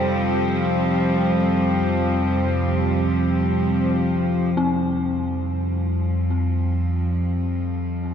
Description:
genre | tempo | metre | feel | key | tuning
ambient | free time | none | none | unclear | A4 = 441 Hz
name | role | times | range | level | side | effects
rich studio cello section | sustained chords | 0.0-8.1 s | F3 to G4 | -23 LUFS | equal | none
dark detuned synth bell | arpeggios | 0.0-8.1 s | C4 to Eb4 | -30 LUFS | left 1 dB | chorus, tape echo
analog drone | drone | 0.0-8.1 s | F2 to C3 | -22 LUFS | equal | chorus
icy glass pad | texture | 0.0-4.6 s | C5 | -32 LUFS | right 1 dB | chorus, built-in reverb
room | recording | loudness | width
wet cathedral reverb, RT60 5.7 s | dark, warm production | -19 LUFS | side -8 dB against mid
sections
0.0-4.6 A section; 4.6-8.1 B section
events
none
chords
0.0 Fsus2

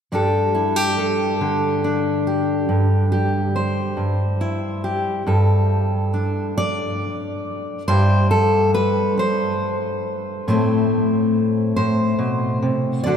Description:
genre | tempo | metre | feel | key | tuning
folk, solo fingerstyle acoustic guitar | 46 BPM (dotted quarters) | 6/8 | straight | unclear | A4 = 441 Hz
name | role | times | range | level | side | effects
fingerpicked steel-string acoustic guitar | solo | 0.1-13.2 s | G2 to D5 | -17 LUFS | equal | none
room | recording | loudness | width
wet cathedral reverb, RT60 5.6 s | in a vast, echoing space | -18 LUFS | side -8 dB against mid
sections
0.1-5.3 A section; 5.3-13.2 B section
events
none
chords
0.1 Gsus2; 2.7 C/G; 5.3 Gsus2; 7.9 C/G; 10.5 Am

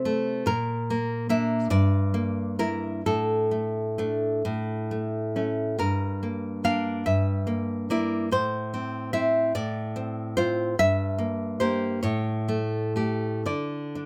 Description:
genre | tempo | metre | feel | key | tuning
romantic piece for solo classical guitar | 40-50 BPM (dotted quarters) | 6/8 | rubato | unclear | A4 = 438 Hz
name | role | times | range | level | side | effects
nylon-string guitar | solo | 0.0-14.1 s | G2 to F5 | -27 LUFS | equal | none
room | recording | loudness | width
little or no reverb | close, detailed microphones | -27 LUFS | mono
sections
0.0-14.1 A section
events
none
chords
0.5 Bb; 1.7 Em7b5/G; 3.0 Asus4; 4.5 A; 5.8 Gm; 7.1 Edim/G; 8.3 Am; 9.6 F/A; 10.8 Edim/G; 12.0 A7; 13.5 N.C.

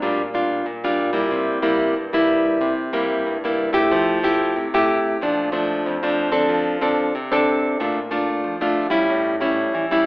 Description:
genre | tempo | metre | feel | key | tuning
samba | 93 BPM | 4/4 | straight | F major | A4 = 440 Hz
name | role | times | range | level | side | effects
nylon-string guitar | solo | 0.0-10.1 s | F2 to A4 | -18 LUFS | equal | none
room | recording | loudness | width
wet large studio reverb, RT60 1.3 s | band playing live in one room, telephone sound | -18 LUFS | side -22 dB against mid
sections
0.0-10.1 A section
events
none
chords
0.0 Gm7/Bb; 1.3 C7; 3.9 Fmaj9; 5.2 Bbmaj7; 6.5 F6; 7.8 Bbmaj7; 9.1 A7

